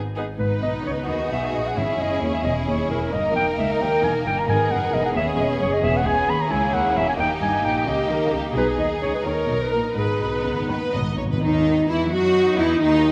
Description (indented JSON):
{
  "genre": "quick classical-period movement for symphony orchestra",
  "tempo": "88 BPM (dotted quarters)",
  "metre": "6/8",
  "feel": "straight",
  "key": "G# minor",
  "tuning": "A4 = 440 Hz",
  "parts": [
    { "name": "rich studio double bass section", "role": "bass", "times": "0.0-13.1 s", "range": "E1 to F#2", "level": "-31 LUFS", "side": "equal", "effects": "none" },
    { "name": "rich studio violin section", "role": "melody", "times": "0.2-13.1 s", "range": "D#4 to D#5", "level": "-32 LUFS", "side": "equal", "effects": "none" },
    { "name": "rich studio viola section", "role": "accompaniment", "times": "0.2-13.1 s", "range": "B3 to B4", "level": "-29 LUFS", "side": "equal", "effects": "none" },
    { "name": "rich studio violin section", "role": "second line", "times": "0.4-13.1 s", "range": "A#3 to F#4", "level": "-30 LUFS", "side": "equal", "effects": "none" },
    { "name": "warm clarinet", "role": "second line", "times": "0.4-10.7 s", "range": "G#4 to B5", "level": "-26 LUFS", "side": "equal", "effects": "none" },
    { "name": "clear studio cello section", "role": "bass", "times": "0.4-13.1 s", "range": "C#2 to F#3", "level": "-31 LUFS", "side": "equal", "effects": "none" },
    { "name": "timpani", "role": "percussion", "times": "0.4-5.1, 10.0-11.4 s", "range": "G#2", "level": "-33 LUFS", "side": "equal", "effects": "none" },
    { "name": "dark French horn section", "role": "sustained chords", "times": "11.4-13.1 s", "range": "D#4 to F#4", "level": "-23 LUFS", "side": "equal", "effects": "none" }
  ],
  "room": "moderate scoring stage reverb, RT60 1.7 s",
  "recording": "none",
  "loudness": "-22 LUFS",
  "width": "mono",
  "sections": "0.4-11.4 A section; 11.4-13.1 B section",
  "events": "timpani fill 10.0-11.4",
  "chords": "0.4 G#m; 1.8 Emaj13; 3.1 D#7; 4.5 G#m; 5.8 E; 6.5 A#dim/C#; 7.2 D#; 7.9 D#7/C#; 8.6 G#m/B; 9.3 D#5; 10.0 G#m; 11.4 D#m"
}